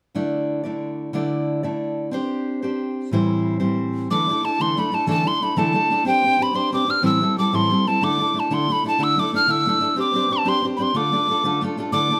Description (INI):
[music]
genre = celtic folk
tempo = 122 BPM (dotted quarters)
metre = 6/8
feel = straight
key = D minor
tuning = A4 = 440 Hz
[part]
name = fingerpicked steel-string acoustic guitar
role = accompaniment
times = 0.1-12.2 s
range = A2 to D5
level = -24 LUFS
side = equal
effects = none
[part]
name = mellow hollow tin whistle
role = melody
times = 4.1-12.2 s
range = G5 to F6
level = -22 LUFS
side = equal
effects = plate reverb
[sound]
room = moderate small room reverb, RT60 0.5 s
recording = none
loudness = -21 LUFS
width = mono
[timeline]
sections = 0.1-4.1 A section; 4.1-11.9 B section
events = none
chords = 0.1 Dsus2; 2.1 Csus2; 3.1 Am7; 4.1 Dsus2; 6.1 Csus2; 7.0 Am7; 8.0 Dsus2; 10.0 Csus2; 10.9 Dm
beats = | 0.15 0.64 | 1.14 1.63 | 2.13 2.62 | 3.11 3.61 | 4.10 4.59 | 5.08 5.57 | 6.06 6.55 | 7.04 7.53 | 8.02 8.51 | 9.00 9.49 | 9.97 10.46 | 10.95 11.44 | 11.93